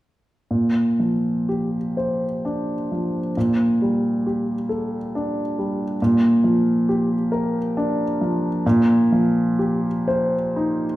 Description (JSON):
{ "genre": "classical, impressionist solo piano", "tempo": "39-46 BPM (dotted quarters)", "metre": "6/8", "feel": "rubato", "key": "Bb major", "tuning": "A4 = 440 Hz", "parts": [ { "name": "clear concert grand piano", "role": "solo", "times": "0.5-11.0 s", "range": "Bb2 to C5", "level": "-18 LUFS", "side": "equal", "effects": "none" } ], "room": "wet recital hall reverb, RT60 1.4 s", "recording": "recorded in a church or concert hall", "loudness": "-19 LUFS", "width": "side -16 dB against mid", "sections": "0.5-11.0 A section", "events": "none", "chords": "0.5 Bb69; 3.4 Gmadd9/Bb; 6.0 Bb6; 8.6 F9sus4/Bb" }